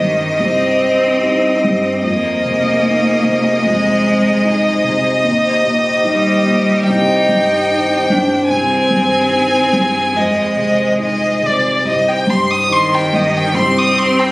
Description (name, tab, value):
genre	neoclassical piano and strings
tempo	73 BPM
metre	4/4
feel	rubato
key	C minor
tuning	A4 = 440 Hz
part	clear violin	melody	0.0-14.3 s	D5 to Eb6	-15 LUFS	equal	none
part	clear cello	second line	0.0-14.3 s	Eb3 to Eb4	-16 LUFS	equal	none
part	felt-muted upright piano	accompaniment	0.0-14.3 s	C2 to Eb4	-20 LUFS	equal	none
part	dark chamber string section	sustained chords	0.0-14.3 s	Eb3 to C5	-23 LUFS	equal	none
room	light reverb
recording	recorded on a phone in the room, studio reverb, compression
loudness	-12 LUFS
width	side -21 dB against mid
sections	0.0-14.3 A section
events	none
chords	0.0 Cm; 2.0 Fm7; 5.3 Eb6; 6.9 Cm; 8.5 Abmaj7/C; 10.2 Fm7; 11.9 Cm